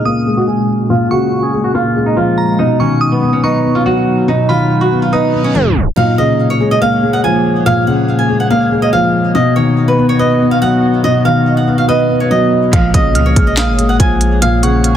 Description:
hip hop, trap; 142 BPM; 4/4; half-time; Bb phrygian; A4 = 440 Hz
flamenco guitar; melody; 0.0-15.0 s; B3 to Ab5; -15 LUFS; right 3 dB; low-pass filter, digital delay
glassy synth bell; second line; 0.0-5.5, 12.9-15.0 s; Bb5 to F6; -21 LUFS; right 2 dB; chorus, tremolo, digital delay
dark concert grand piano; accompaniment; 0.0-15.0 s; Bb2 to B4; -13 LUFS; left 2 dB; low-pass filter
warbly tape-like pad; sustained chords; 0.1-15.0 s; Bb2 to D#5; -21 LUFS; right 2 dB; chorus, built-in reverb, tremolo, phaser, low-pass filter
reverse cymbal; sound effects; 5.3-6.0 s; -29 LUFS; right 5 dB
rich symphonic string section; stabs; 12.7-13.1 s; Db2 to F3; -21 LUFS; right 3 dB; digital delay
clean 808-style bass; bass; 12.7-15.0 s; Ab1 to Db2; -15 LUFS; equal
trap drum kit; drums; 12.7-14.9 s; handclaps, hi-hat, kick drum, snare drum; -13 LUFS; equal
light reverb, digital ambience; dense, heavily limited modern master, tape stop; -10 LUFS; side -10 dB against mid
0.0-6.0 A section; 6.0-15.0 B section
filter sweep 0.0-6.0; reverse cymbal 5.3-6.0; tape stop 5.5-6.0
0.0 Bbm7; 2.6 B; 6.0 Bbm7; 9.3 B; 12.7 Bbm7

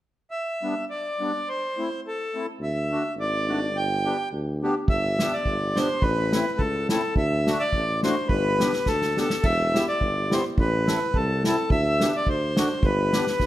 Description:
alpine folk, alpine dance band; 106 BPM; 2/4; swing 54% on 8ths; G major; A4 = 443 Hz
accordion; melody; 0.3-13.5 s; A4 to G5; -25 LUFS; equal
accordion; accompaniment; 0.6-13.3 s; G3 to A4; -30 LUFS; left 1 dB; light tremolo tuning
clear tuba; bass; 2.6-13.5 s; E1 to D2; -28 LUFS; equal
unplugged drum kit; drums; 4.9-13.5 s; crash cymbal, kick drum, snare drum; -26 LUFS; equal
moderate recital hall reverb, RT60 1.4 s; -22 LUFS; side -14 dB against mid
0.3-4.9 A section; 4.9-13.5 B section
drum fill 8.9-9.4
0.3 G; 1.5 Am; 2.6 D; 3.7 G; 6.0 Am; 7.2 D; 8.3 G; 9.4 Em; 10.6 Am; 11.7 G/D; 12.3 D; 12.8 G

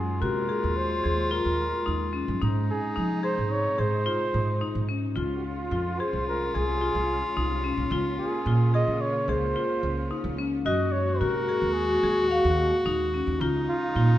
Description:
contemporary instrumental, chamber music in an uneven meter; 109 BPM; 5/4; straight; Db major; A4 = 443 Hz
breathy flugelhorn; melody; 0.0-14.2 s; F4 to Eb5; -30 LUFS; right 2 dB
clear clarinet; second line; 0.0-14.2 s; Eb4 to Gb4; -30 LUFS; left 2 dB
rich studio string section; sustained chords; 0.0-14.2 s; Bb2 to Gb4; -37 LUFS; right 1 dB
marimba with hard mallets; arpeggios; 0.0-14.2 s; Gb3 to F5; -30 LUFS; left 4 dB
upright bass; bass; 0.0-14.2 s; C2 to F3; -28 LUFS; right 2 dB
wet recital hall reverb, RT60 1.7 s; dark, warm production, faint mains hum; -24 LUFS; side -13 dB against mid
0.0-14.2 A section
0.0 Gbadd9; 2.4 Ab; 5.2 Db; 10.7 Gbadd9; 13.4 Dbadd9

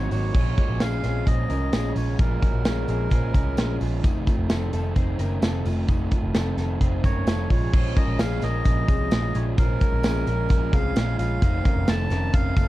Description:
jangly indie pop; 130 BPM; 4/4; straight; Bb minor; A4 = 440 Hz
melodica; melody; 0.0-3.8, 7.0-12.7 s; Bb4 to A5; -31 LUFS; right 1 dB; plate reverb
crunchy overdriven guitar; accompaniment; 0.0-12.7 s; F2 to Eb4; -31 LUFS; right 5 dB
electric guitar through a small old amp; arpeggios; 0.0-12.7 s; Ab3 to C5; -32 LUFS; left 5 dB; tape echo
vintage muted picked electric bass; bass; 0.0-12.7 s; F1 to C2; -26 LUFS; equal
modern studio drum kit; drums; 0.1-12.7 s; crash cymbal, hi-hat, kick drum, snare drum; -23 LUFS; equal; vintage 12-bit sampler grit
tambourine; percussion; 0.1-12.7 s; -52 LUFS; left 5 dB
little or no reverb; dark, warm production; -20 LUFS; side -16 dB against mid
0.3-7.7 A section; 7.7-12.7 B section
0.3 Bbm7; 4.0 F7; 7.5 Bbm7; 11.4 F7

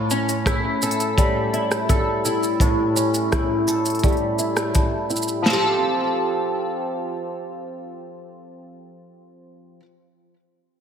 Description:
folktronica; 84 BPM; 4/4; straight; F major; A4 = 439 Hz
picked swing-style acoustic guitar; arpeggios; 0.0-9.9 s; A2 to A4; -21 LUFS; equal; analog chorus, low-pass filter, tape echo
organic electronic drum kit; drums; 0.1-5.4 s; hi-hat, rim click, shaker; -28 LUFS; right 2 dB; studio reverb
crunchy breakbeat drum kit; drums; 0.5-5.6 s; kick drum, snare drum, splash cymbal; -21 LUFS; equal; studio reverb
wet plate reverb, RT60 2.7 s; dreamy mix soaked in reverb; -19 LUFS; side -8 dB against mid
0.0-5.5 A section; 5.5-8.3 B section
filter sweep on steel-string acoustic guitar 0.0-5.5
0.0 A7; 5.5 Fadd9

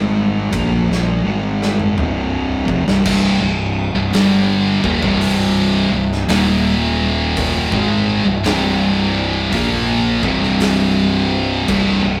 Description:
stoner and doom metal; 56 BPM; 4/4; swing 65% on 8ths; C minor; A4 = 440 Hz
thick fuzz guitar; riff; 0.0-12.2 s; C2 to Bb3; -22 LUFS; equal; distortion
thick fuzz guitar; riff; 0.0-12.2 s; C2 to Bb3; -23 LUFS; equal; distortion
fuzz fingered electric bass; bass; 0.0-12.2 s; C1 to Bb1; -24 LUFS; equal; overdrive
oversized low-tuned drum kit; drums; 0.5-12.0 s; crash cymbal, hi-hat, kick drum, ride cymbal, snare drum, toms; -24 LUFS; equal
heavy high-gain guitar; riff; 3.1-12.2 s; C2 to Bb3; -22 LUFS; equal; distortion
light reverb; rough rehearsal-room recording, tube saturation; -16 LUFS; mono
0.0-3.1 A section; 3.1-12.2 B section
drum fill 0.9-3.1
0.0 Cm; 6.3 Eb5; 7.6 Cm

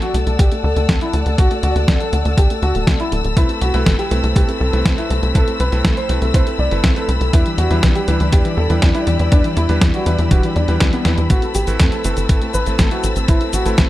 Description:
italo disco; 121 BPM; 4/4; straight; A dorian; A4 = 442 Hz
dark concert grand piano; melody; 0.0-13.9 s; E3 to D5; -21 LUFS; left 1 dB; vintage 12-bit sampler grit, tape echo
warm studio string section; sustained chords; 0.0-13.9 s; C4 to E6; -25 LUFS; left 3 dB
detuned 8-bit digital drum machine; drums; 0.0-13.9 s; cabasa, hi-hat, snare drum; -21 LUFS; equal
tight sequencer bass; bass; 0.1-13.9 s; D1 to E2; -18 LUFS; equal
electronic kick drum; drums; 0.4-13.9 s; -16 LUFS; equal
bright electric grand piano; stabs; 3.4-13.9 s; G3 to B4; -24 LUFS; right 2 dB; low-pass filter
light reverb; dark, warm production; -14 LUFS; side -15 dB against mid
0.0-13.9 A section
drum fill 11.1
0.0 Dadd9; 3.4 Amadd9; 7.3 Em7; 11.3 Amadd9

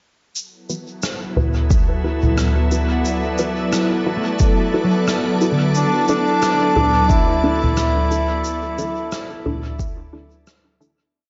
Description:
ambient dub; 89 BPM; 4/4; swing 58% on 16ths; A4 = 440 Hz
soft additive organ-like pad; sustained chords; 1.1-11.1 s; F#3 to D5; -24 LUFS; equal; ensemble chorus, built-in reverb
soft-mallet drum kit; drums; 0.4-11.0 s; rim click, shaker, toms; -24 LUFS; equal; dub echo
wind-like tuned noise texture; texture; 1.2-11.2 s; A4; -35 LUFS; equal
filtered dub chord stab; stabs; 0.7-11.0 s; D4 to B4; -28 LUFS; equal; phaser, dub echo
electronic kick drum; drums; 1.7-10.0 s; -19 LUFS; equal
concert harp; arpeggios; 2.9-7.5 s; D3 to F#5; -27 LUFS; equal; tape echo
clear trombone; melody; 5.8-10.5 s; D4 to E4; -22 LUFS; equal; dub echo
wet plate reverb, RT60 1.3 s, studio reverb; dreamy mix soaked in reverb, nothing above 7.6 kHz; -18 LUFS; mono
0.4-11.1 groove
fade-out 7.5-11.1
0.4 Dsus2

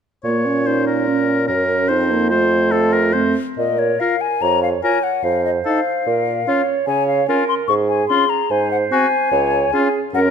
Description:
quick classical-period movement for wind quintet; 146 BPM; 4/4; rubato; Bb minor; A4 = 440 Hz
clear oboe; second line; 0.2-10.3 s; F4 to Db5; -22 LUFS; left 3 dB
mellow French horn; accompaniment; 0.2-10.3 s; A3 to F4; -22 LUFS; right 1 dB
warm bassoon; bass; 0.2-10.3 s; Db2 to Db3; -21 LUFS; right 2 dB
clear clarinet; accompaniment; 0.3-10.3 s; C4 to Db5; -22 LUFS; right 7 dB
hollow concert flute; melody; 3.6-10.2 s; Db5 to Db6; -20 LUFS; left 9 dB
moderate scoring stage reverb, RT60 1.5 s; -15 LUFS; side -7 dB against mid
0.2-3.6 A section; 3.6-10.3 B section
0.2 Bbm; 1.9 F7; 3.6 Bbm; 5.2 F7(no3); 6.1 Bbm; 6.9 Db; 8.5 Ab7; 9.3 Db5

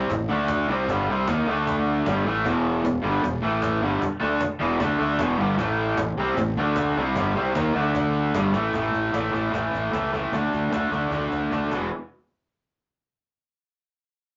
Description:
garage rock duo or trio; 153 BPM; 4/4; straight; A4 = 440 Hz
raw garage guitar; riff; 0.0-11.9 s; E2 to Eb4; -25 LUFS; equal; overdrive
fuzz fingered electric bass; bass; 0.0-11.9 s; E1 to Eb2; -33 LUFS; equal; overdrive
cajon; drums; 0.1-11.8 s; -37 LUFS; equal
wet studio reverb, RT60 0.5 s; rough rehearsal-room recording, warm saturation, nothing above 7.6 kHz; -24 LUFS; mono
0.0-2.4 A section; 2.4-8.7 A section; 8.7-11.9 B section; 11.9-13.5 C section
drum fill 8.5; kick and snare drop out 11.1-11.9
0.3 D5; 0.7 Cm9/G; 1.5 D5; 2.1 A5; 2.4 E5; 3.4 A5; 3.8 E5; 5.6 A5; 6.6 D5; 7.0 Cm9/G; 7.8 D5; 8.3 A5; 8.7 A; 10.3 D5; 11.7 E5; 11.9 N.C.

